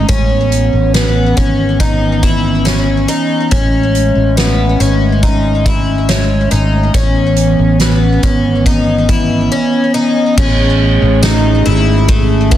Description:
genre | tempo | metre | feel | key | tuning
dream pop | 70 BPM | 4/4 | straight | A lydian | A4 = 435 Hz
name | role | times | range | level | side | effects
warbly tape-like pad | sustained chords | 0.0-12.6 s | E3 to G#4 | -15 LUFS | equal | chorus, built-in reverb
picked twelve-string acoustic guitar | arpeggios | 0.0-12.6 s | A3 to E4 | -16 LUFS | left 2 dB | analog chorus, tape echo
fretless electric bass | bass | 0.0-12.6 s | G#1 to A1 | -14 LUFS | equal | none
soft-mallet drum kit | drums | 0.1-12.6 s | crash cymbal, hi-hat, kick drum, ride cymbal, snare drum, tambourine | -16 LUFS | equal | none
room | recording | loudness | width
small room reverb | dense, heavily limited modern master | -10 LUFS | side -12 dB against mid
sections
0.0-10.4 A section; 10.4-12.6 B section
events
none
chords
0.0 Amaj7

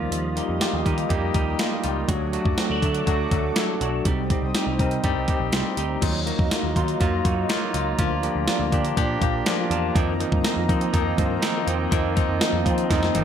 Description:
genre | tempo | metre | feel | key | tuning
1980s-style pop | 122 BPM | 4/4 | straight | unclear | A4 = 441 Hz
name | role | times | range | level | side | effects
bell-like tine electric piano | accompaniment | 0.0-13.2 s | F3 to C6 | -25 LUFS | left 1 dB | medium stereo tremolo
warm analog pad | sustained chords | 0.0-13.2 s | F4 to Eb6 | -32 LUFS | right 1 dB | chorus
semi-hollow electric guitar | riff | 0.0-13.2 s | Eb3 to G4 | -30 LUFS | right 4 dB | ensemble chorus, ping-pong delay
vintage muted picked electric bass | bass | 0.0-13.2 s | G1 to F3 | -28 LUFS | equal | none
clean 12-bit digital drum machine | drums | 0.1-13.2 s | crash cymbal, hi-hat, kick drum, snare drum, toms | -24 LUFS | equal | gated reverb
room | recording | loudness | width
moderate plate reverb, RT60 1.3 s | bright 1980s-style digital production | -20 LUFS | side -8 dB against mid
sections
0.0-6.0 A section; 6.0-13.2 B section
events
tine electric piano fill 5.3-6.0; drum fill 12.9-13.2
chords
0.0 Ebadd9; 2.1 D; 4.1 Cm; 6.0 Ebmadd9; 8.0 Bb/D; 10.0 F7sus4

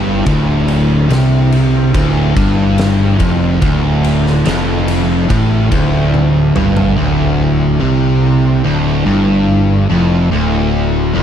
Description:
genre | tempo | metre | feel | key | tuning
stoner and doom metal | 72 BPM | 4/4 | straight | D minor | A4 = 440 Hz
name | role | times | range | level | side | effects
string machine, full ensemble | sustained chords | 0.0-11.2 s | D3 to E4 | -25 LUFS | left 1 dB | phaser, ensemble chorus
distorted electric guitar | riff | 0.0-11.2 s | D2 to C3 | -18 LUFS | equal | overdrive
thick fuzz guitar | riff | 0.0-11.2 s | D2 to C3 | -16 LUFS | left 7 dB | distortion
thick fuzz guitar | riff | 0.0-11.2 s | D2 to C3 | -16 LUFS | right 8 dB | distortion
fuzz fingered electric bass | bass | 0.0-11.2 s | D1 to C2 | -18 LUFS | equal | overdrive
oversized low-tuned drum kit | drums | 0.3-7.0 s | kick drum, ride cymbal, snare drum, toms | -19 LUFS | left 1 dB | none
room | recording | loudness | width
light reverb | dark, warm production | -10 LUFS | side -9 dB against mid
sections
0.0-7.0 A section; 7.0-11.2 B section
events
drum fill 6.1-7.0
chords
0.0 Dm

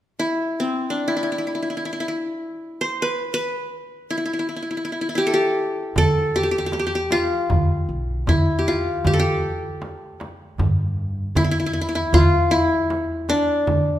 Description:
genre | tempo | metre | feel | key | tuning
Turkish makam ensemble | 78 BPM | 4/4 | straight | E makam kurdi | A4 = 440 Hz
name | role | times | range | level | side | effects
qanun | melody | 0.2-14.0 s | C4 to C5 | -21 LUFS | left 1 dB | none
upright bass | bass | 6.0-14.0 s | B1 to G2 | -24 LUFS | equal | none
darbuka | percussion | 6.0-13.9 s | none | -26 LUFS | right 3 dB | none
frame drum | percussion | 6.0-13.9 s | none | -27 LUFS | equal | none
room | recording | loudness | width
wet recital hall reverb, RT60 1.8 s | minimal, uncompressed stereo recording | -19 LUFS | side -12 dB against mid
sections
0.0-6.0 A section; 6.0-14.0 B section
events
none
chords
none

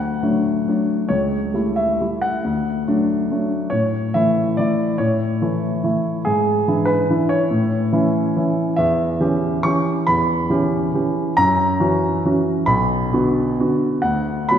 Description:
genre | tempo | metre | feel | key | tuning
classical, piano waltz | 128-150 BPM | 3/4 | rubato | B minor from 8.8 s | A4 = 444 Hz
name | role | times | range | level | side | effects
warm grand piano | solo | 0.0-14.6 s | B1 to C#6 | -17 LUFS | equal | none
room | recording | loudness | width
wet concert hall reverb, RT60 2.2 s | heard from further back in the room | -17 LUFS | side -9 dB against mid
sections
0.0-14.6 A section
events
none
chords
0.0 D; 1.1 A7/C#; 2.4 D; 3.7 A; 6.3 E7/G#; 7.5 A; 8.8 C#m7b5/E; 11.4 F#7; 12.7 Bm; 14.0 Bm/D

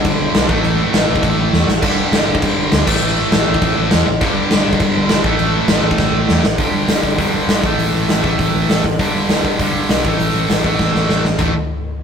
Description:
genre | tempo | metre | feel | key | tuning
punk rock | 202 BPM | 4/4 | straight | unclear | A4 = 441 Hz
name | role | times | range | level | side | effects
tight distorted guitar | riff | 0.0-11.5 s | G2 to A3 | -17 LUFS | right 1 dB | distortion
hollow-body short-scale picked electric bass | bass | 0.0-11.5 s | G1 to E2 | -20 LUFS | equal | none
big rock drum kit | drums | 0.0-11.5 s | crash cymbal, hi-hat, kick drum, snare drum, toms | -16 LUFS | equal | none
room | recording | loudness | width
light reverb | rough rehearsal-room recording, tube saturation | -13 LUFS | side -7 dB against mid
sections
0.0-6.6 A section; 6.6-11.4 B section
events
drum fill 1.5, 6.0-6.6, 10.8-11.4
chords
0.5 A5; 1.8 G5; 2.9 A5; 4.2 G5; 5.2 A5; 6.6 G5; 7.6 A5; 9.0 G5; 10.0 A5

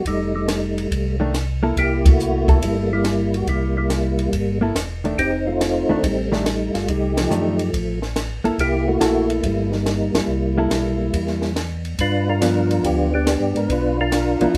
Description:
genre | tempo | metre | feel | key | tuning
soul jazz organ trio | 141 BPM | 4/4 | swing 67% on 8ths | C mixolydian | A4 = 442 Hz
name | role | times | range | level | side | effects
percussive tonewheel organ | melody | 0.0-14.6 s | F3 to B4 | -23 LUFS | equal | slow rotary speaker, chorus vibrato
mellow tonewheel organ | bass | 0.1-14.6 s | E1 to Ab2 | -27 LUFS | equal | chorus vibrato
compact cocktail drum kit | drums | 0.1-14.6 s | hi-hat, kick drum, ride cymbal, snare drum | -24 LUFS | equal | none
hollow-body jazz guitar | accompaniment | 1.2-14.5 s | Eb3 to A4 | -25 LUFS | equal | none
room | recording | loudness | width
moderate small room reverb, RT60 0.5 s | faint mains hum | -20 LUFS | mono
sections
0.0-14.6 A section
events
band accent 2.0, 7.1, 10.1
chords
0.1 F9; 1.8 C13; 5.2 F13; 8.6 C6; 12.0 G

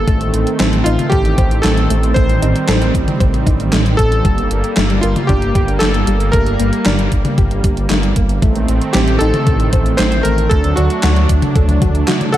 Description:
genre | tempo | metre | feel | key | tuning
synthwave | 115 BPM | 4/4 | straight | G minor | A4 = 438 Hz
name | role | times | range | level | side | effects
bright electric grand piano | melody | 0.0-12.4 s | F4 to C5 | -20 LUFS | equal | ping-pong delay
warm analog pad | sustained chords | 0.0-12.4 s | Eb3 to D4 | -20 LUFS | right 2 dB | chorus, sidechain pumping
dark detuned saw bass | bass | 0.0-12.0 s | G1 to D2 | -16 LUFS | equal | none
soft round pluck | arpeggios | 0.1-12.4 s | G3 to F#5 | -24 LUFS | left 1 dB | chorus, digital delay
electronic kick drum | drums | 0.1-11.9 s | none | -16 LUFS | equal | overdrive
gated 80s digital drum machine | drums | 0.1-12.4 s | handclaps, hi-hat, snare drum, toms | -19 LUFS | left 1 dB | gated reverb, gated reverb snare, overdrive
room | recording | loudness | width
light reverb, digital ambience | dark, warm production | -12 LUFS | side -13 dB against mid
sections
0.0-12.4 A section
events
drum fill 11.8-12.4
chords
0.1 Adim; 4.2 Gmadd9; 8.4 Adim; 10.5 D

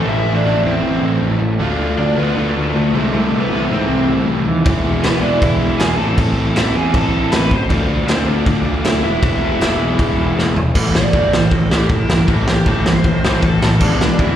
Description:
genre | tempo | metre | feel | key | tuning
punk rock | 157 BPM | 4/4 | straight | A harmonic minor, A minor from 10.8 s | A4 = 442 Hz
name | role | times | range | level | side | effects
raw garage guitar | melody | 0.0-14.4 s | G#3 to C6 | -21 LUFS | equal | overdrive, slapback echo, ping-pong delay
overdriven electric guitar | riff | 0.0-14.4 s | A2 to F4 | -18 LUFS | equal | slapback echo
fuzz picked electric bass | bass | 0.0-14.3 s | E1 to G#2 | -19 LUFS | equal | overdrive
raw garage drum kit | drums | 4.7-14.3 s | crash cymbal, kick drum, ride cymbal, snare drum, toms | -18 LUFS | equal | none
room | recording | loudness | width
studio reverb | live gig heard through the venue's PA, recital hall reverb | -13 LUFS | side -10 dB against mid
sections
0.0-10.8 A section; 10.8-14.4 B section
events
half time 0.0-10.8; drum fill 10.4-10.8; overdriven electric guitar solo 10.8-14.4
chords
0.0 Am; 1.6 Dm; 2.9 Am/C; 4.7 E; 6.0 Am; 7.7 Dm; 9.0 E; 10.8 Am; 13.8 E

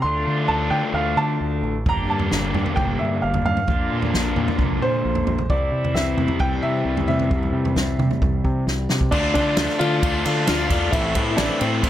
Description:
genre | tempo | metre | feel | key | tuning
indie rock | 132 BPM | 4/4 | straight | D minor | A4 = 440 Hz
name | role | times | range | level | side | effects
warm upright piano | melody | 0.0-11.9 s | C4 to C6 | -25 LUFS | equal | tape echo
crunchy overdriven guitar | riff | 0.0-11.9 s | G2 to G4 | -25 LUFS | left 6 dB | none
overdriven electric guitar | riff | 0.0-11.9 s | G2 to G4 | -28 LUFS | right 6 dB | wide subtle chorus
growling fingered electric bass | bass | 0.0-11.9 s | G1 to D3 | -25 LUFS | equal | overdrive
unplugged drum kit | drums | 1.9-11.9 s | crash cymbal, kick drum, ride cymbal, snare drum, toms | -23 LUFS | right 1 dB | none
combo organ | sustained chords | 9.1-11.9 s | E4 to A5 | -35 LUFS | left 1 dB | none
room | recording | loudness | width
light reverb, small room reverb | none | -18 LUFS | side -12 dB against mid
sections
0.0-9.1 A section; 9.1-11.9 B section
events
drum fill 8.7-9.1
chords
0.0 Dm7; 1.9 Gm; 3.7 Bb; 5.5 C; 9.1 Dm; 10.9 Am

